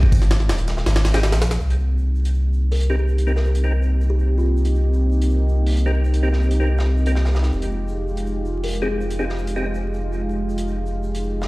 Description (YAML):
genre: drum and bass, jungle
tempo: 162 BPM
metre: 4/4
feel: straight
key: unclear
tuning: A4 = 439 Hz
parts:
  - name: soft dub sub bass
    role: bass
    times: 0.0-11.5 s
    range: Eb1 to C2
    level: -19 LUFS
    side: equal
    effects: none
  - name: jungle sampler-style drum kit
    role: drums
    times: 0.0-1.6 s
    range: kick drum, ride cymbal, snare drum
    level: -20 LUFS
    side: equal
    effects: small room reverb
  - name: crunchy breakbeat drum kit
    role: drums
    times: 0.1-11.5 s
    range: hi-hat, shaker, snare drum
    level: -34 LUFS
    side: equal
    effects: high-pass filter on hats, small room reverb, high-pass filter on snare, high-pass filter on perc, high-pass filter on room
  - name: percussive tonewheel organ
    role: stabs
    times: 1.1-9.7 s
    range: C4 to Bb4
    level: -29 LUFS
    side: equal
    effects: overdrive, chorus vibrato, fast rotary speaker, low-pass filter, dub echo
  - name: lush unison pad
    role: sustained chords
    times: 1.6-11.5 s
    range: Ab3 to G4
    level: -27 LUFS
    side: right 1 dB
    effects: chorus, vintage 12-bit sampler grit
  - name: kalimba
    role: melody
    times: 2.7-4.7, 8.6-9.7 s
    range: F4 to Eb5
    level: -31 LUFS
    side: equal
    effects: dub echo
room: light reverb, studio reverb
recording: played on a big sound system in a bare room, large studio reverb, vinyl crackle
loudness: -18 LUFS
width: side -21 dB against mid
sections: 0.0-1.6 A section; 1.6-11.5 B section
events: drop 0.0-1.6; filter sweep on analog synth pad 1.6-11.5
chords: 0.0 Fm7 (rootless); 1.6 Cm7; 7.5 Fm9